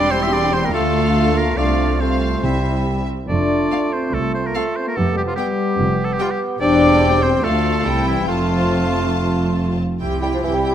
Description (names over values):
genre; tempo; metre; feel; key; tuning
quick classical-period movement for symphony orchestra; 142 BPM; 4/4; rubato; F major; A4 = 442 Hz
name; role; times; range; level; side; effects
clear studio violin section; melody; 0.0-10.7 s; E5 to C6; -28 LUFS; left 4 dB; none
bright oboe; second line; 0.0-10.7 s; E4 to E5; -23 LUFS; right 1 dB; none
rich studio violin section; second line; 0.0-10.7 s; B3 to G4; -30 LUFS; equal; none
warm clarinet; second line; 0.0-10.7 s; C4 to G4; -28 LUFS; left 1 dB; none
mellow bassoon; accompaniment; 0.0-10.7 s; E3 to C4; -25 LUFS; right 2 dB; none
rich studio viola section; accompaniment; 0.0-10.7 s; G3 to G4; -28 LUFS; right 1 dB; none
mellow French horn section; sustained chords; 0.0-10.7 s; E3 to G4; -22 LUFS; left 4 dB; none
rich studio cello section; bass; 0.0-10.7 s; C2 to C3; -24 LUFS; right 2 dB; none
rich studio double bass section; bass; 0.0-10.7 s; E1 to D2; -23 LUFS; right 2 dB; none
timpani; percussion; 2.4-3.0 s; C3; -25 LUFS; equal; none
room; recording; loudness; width
light reverb; none; -16 LUFS; side -10 dB against mid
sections
0.0-10.0 A section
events
none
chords
0.0 C/E; 0.7 Dm; 1.6 F/C; 2.4 C; 3.3 F; 5.0 G7/F; 6.6 C/E; 7.4 Dm; 7.9 C; 8.3 F; 10.0 C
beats
0.32 0.73 1.15 | 1.58 2.01 2.44 2.87 | 3.29 3.72 4.14 4.55 | 4.97 5.37 5.79 6.19 | 6.61 7.02 7.43 7.85 | 8.28 8.71 9.14 9.58 | 10.01 10.43